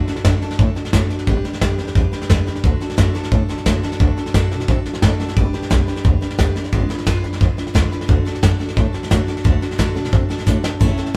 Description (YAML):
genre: rockabilly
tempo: 176 BPM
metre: 4/4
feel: straight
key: D major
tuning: A4 = 440 Hz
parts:
  - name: picked steel-string acoustic guitar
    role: accompaniment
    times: 0.0-11.2 s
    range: A2 to B4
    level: -27 LUFS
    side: equal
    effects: none
  - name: upright bass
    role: bass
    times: 0.1-11.0 s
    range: G1 to C3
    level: -23 LUFS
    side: equal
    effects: none
  - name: soft brush drum kit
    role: drums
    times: 0.1-11.1 s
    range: hi-hat, kick drum, snare drum, splash cymbal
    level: -20 LUFS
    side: equal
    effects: none
room: light reverb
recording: band playing live in one room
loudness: -18 LUFS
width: mono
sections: 0.0-11.2 A section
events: drum fill 10.5-10.8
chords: 0.0 D; 1.3 G; 2.6 D; 5.4 G; 6.7 G#dim7; 8.1 D